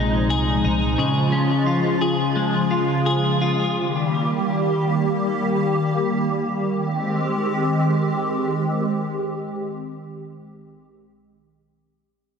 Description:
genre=dream pop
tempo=75-88 BPM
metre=4/4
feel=straight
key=Ab major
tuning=A4 = 440 Hz
part: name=hollow soft pad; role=sustained chords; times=0.0-10.8 s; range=Bb2 to G4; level=-21 LUFS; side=equal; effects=ensemble chorus, phaser
part: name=clean electric guitar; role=arpeggios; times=0.0-3.8 s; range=C3 to Ab4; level=-22 LUFS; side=left 3 dB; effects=analog chorus, tape echo
part: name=vintage muted picked electric bass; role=bass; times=0.0-0.9 s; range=Bb1 to C2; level=-23 LUFS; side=equal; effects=none
room=wet lush hall reverb, RT60 2.7 s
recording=dense, heavily limited modern master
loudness=-19 LUFS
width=side -6 dB against mid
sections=0.0-6.8 A section; 6.8-10.0 B section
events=slowing down 1.0-6.8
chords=0.0 Ab6; 1.0 Db; 3.8 Eb; 6.8 Abmaj7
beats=0.30 | 0.98 1.67 2.35 3.05 | 3.76 4.49 5.23 6.00 | 6.79 7.59 8.39 9.19

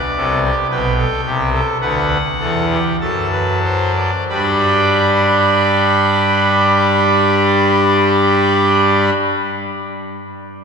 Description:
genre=classical, baroque-style 3-part fugue for pipe organ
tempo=45-57 BPM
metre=4/4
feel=straight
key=G major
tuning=A4 = 440 Hz
part: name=pipe organ, trumpet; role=solo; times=0.0-9.1 s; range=B1 to B5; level=-13 LUFS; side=equal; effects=none
room=wet cathedral reverb, RT60 5.0 s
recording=heard from further back in the room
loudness=-12 LUFS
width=side -5 dB against mid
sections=0.0-4.3 A section; 4.3-9.6 B section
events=slowing down 0.0-4.3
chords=0.0 G; 1.8 D; 4.3 G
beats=0.70 1.81 3.01 | 4.28 5.61 6.94 8.27

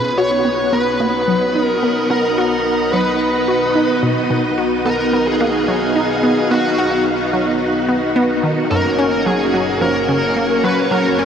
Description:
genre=ambient, sequencer-driven space music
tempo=109 BPM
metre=4/4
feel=straight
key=B lydian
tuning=A4 = 440 Hz
part: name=bluesy overdriven lead guitar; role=melody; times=0.0-11.2 s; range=F#4 to C#5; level=-19 LUFS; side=equal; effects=distortion, ping-pong delay
part: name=string machine, full ensemble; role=sustained chords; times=0.0-11.2 s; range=A#3 to F#5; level=-18 LUFS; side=equal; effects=ensemble chorus
part: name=resonant blip pluck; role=riff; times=0.0-11.2 s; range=F#2 to F#4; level=-20 LUFS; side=equal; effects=chorus, ping-pong delay
part: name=fat analog bass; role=bass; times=0.0-11.2 s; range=F#1 to B1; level=-38 LUFS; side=equal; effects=none
room=wet huge ambient reverb, RT60 8.0 s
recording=worn, warbling old tape, cassette tape, warbly pitch drift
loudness=-14 LUFS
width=side -8 dB against mid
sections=0.0-11.2 A section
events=fade-in on analog synth bass 0.0-11.2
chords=0.0 B; 8.7 F#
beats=0.45 1.00 1.55 | 2.10 2.65 3.21 3.75 | 4.31 4.86 5.41 5.96 | 6.51 7.06 7.61 8.16 | 8.71 9.26 9.81 10.36 | 10.91

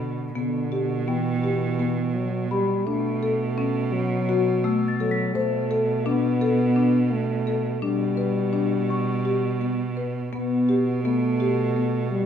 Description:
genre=contemporary instrumental, chamber music in an uneven meter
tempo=168 BPM (eighths)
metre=7/8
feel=straight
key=unclear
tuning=A4 = 439 Hz
part: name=dark French horn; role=second line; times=0.0-12.3 s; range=D3 to B3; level=-26 LUFS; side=left 1 dB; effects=none
part: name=marimba with medium mallets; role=arpeggios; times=0.0-12.3 s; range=A3 to C5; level=-26 LUFS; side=left 4 dB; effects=none
part: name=clear cello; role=bass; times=0.0-12.3 s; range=B2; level=-26 LUFS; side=right 5 dB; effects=none
part: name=celesta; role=texture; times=0.0-10.7 s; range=G5 to B6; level=-36 LUFS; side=left 4 dB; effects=none
room=light reverb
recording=minimal, uncompressed stereo recording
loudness=-21 LUFS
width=side -8 dB against mid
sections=0.3-12.3 A section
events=none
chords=0.3 G/B; 2.9 Dmaj7/B (rootless); 5.3 D5/B; 7.8 G/B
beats=| 0.35 0.71 1.07 1.43 1.79 2.15 2.50 | 2.86 3.22 3.57 3.93 4.28 4.64 4.99 | 5.35 5.70 6.05 6.41 6.76 7.11 7.46 | 7.82 8.17 8.53 8.88 9.24 9.60 9.96 | 10.32 10.68 11.04 11.40 11.75 12.11

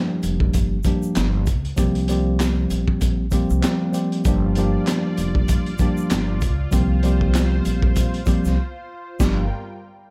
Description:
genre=hip hop, boom-bap hip-hop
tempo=97 BPM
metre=4/4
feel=swing 58% on 16ths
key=G minor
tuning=A4 = 439 Hz
part: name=mellow tine electric piano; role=accompaniment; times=0.0-9.4 s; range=F3 to G4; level=-24 LUFS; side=equal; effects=none
part: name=upright bass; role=bass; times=0.2-9.5 s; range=F1 to C#2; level=-26 LUFS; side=equal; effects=none
part: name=crunchy breakbeat drum kit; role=drums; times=0.2-9.4 s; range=crash cymbal, handclaps, hi-hat, kick drum, snare drum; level=-25 LUFS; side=equal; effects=none
part: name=egg shaker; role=percussion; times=0.2-9.5 s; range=none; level=-42 LUFS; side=equal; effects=none
part: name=lush unison pad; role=sustained chords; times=4.2-9.5 s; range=G3 to G5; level=-37 LUFS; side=equal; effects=chorus, phaser
room=little or no reverb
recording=none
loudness=-20 LUFS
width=mono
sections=0.0-9.2 A section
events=break 8.6-9.2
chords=0.0 Gm7; 1.8 C7sus4; 4.3 Gm7; 6.7 C7sus4; 9.2 Gm7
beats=0.54 1.16 | 1.78 2.40 3.01 3.63 | 4.25 4.87 5.49 6.11 | 6.72 7.34 7.96 8.58 | 9.20

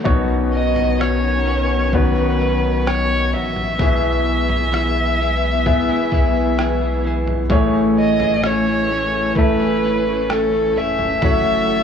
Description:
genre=pop ballad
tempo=64 BPM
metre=4/4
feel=straight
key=E major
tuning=A4 = 440 Hz
part: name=clear concert grand piano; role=accompaniment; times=0.0-11.8 s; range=A2 to E5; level=-20 LUFS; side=left 4 dB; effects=cassette tape, plate reverb
part: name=warm studio string section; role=sustained chords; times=0.0-11.8 s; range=D#3 to A4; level=-26 LUFS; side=right 1 dB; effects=cassette tape, plate reverb
part: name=direct-recorded clean electric guitar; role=arpeggios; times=0.0-11.8 s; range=F#2 to G#4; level=-28 LUFS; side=right 8 dB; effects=vibrato effect, cassette tape, plate reverb
part: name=sub bass with octave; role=bass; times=0.1-11.8 s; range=E1 to B1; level=-23 LUFS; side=equal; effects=none
part: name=trip hop sampler-style drum kit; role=drums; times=0.1-11.4 s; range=kick drum, rim click, toms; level=-22 LUFS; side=equal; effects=cassette tape
part: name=dark violin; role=melody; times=0.5-11.8 s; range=A4 to E5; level=-20 LUFS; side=right 1 dB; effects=cassette tape, plate reverb
room=light reverb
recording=home recording on cassette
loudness=-15 LUFS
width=side -7 dB against mid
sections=0.0-11.8 A section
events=none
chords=0.1 Badd9; 3.8 E/B; 7.5 Amaj7; 11.2 F#m7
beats=| 0.05 0.99 1.93 2.87 | 3.80 4.73 5.66 6.58 | 7.50 8.43 9.36 10.29 | 11.22

